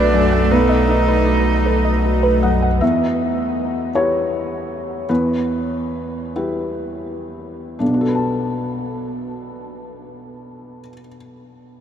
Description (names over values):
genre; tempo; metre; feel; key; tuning
neoclassical piano and strings; 40-54 BPM (dotted quarters); 6/8; rubato; unclear; A4 = 440 Hz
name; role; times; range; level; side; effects
rich cello; second line; 0.0-2.2 s; D4 to D#4; -25 LUFS; right 2 dB; none
felt-muted upright piano; accompaniment; 0.0-11.8 s; B1 to A5; -21 LUFS; left 1 dB; none
warm viola; accompaniment; 0.0-2.6 s; A3; -23 LUFS; right 2 dB; none
glassy FM pad; sustained chords; 0.0-2.8 s; A3 to F#5; -28 LUFS; left 2 dB; ensemble chorus, built-in reverb, phaser
harp-like synth pluck; arpeggios; 0.0-2.7 s; B4 to F#5; -23 LUFS; right 2 dB; chorus, slapback echo
punchy sub bass; bass; 0.0-2.8 s; B1; -19 LUFS; equal; none
room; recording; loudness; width
wet huge ambient reverb, RT60 8.3 s; in a vast, echoing space; -16 LUFS; side -9 dB against mid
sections
0.0-2.8 A section; 2.8-7.8 B section; 7.8-11.8 C section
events
slowing down 1.7-7.8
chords
0.0 Bm7; 0.5 B7; 2.8 Em; 7.8 Bm7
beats
| 0.51 1.66 | 2.82 3.94 | 5.09 6.35 | 7.80 9.26 | 10.70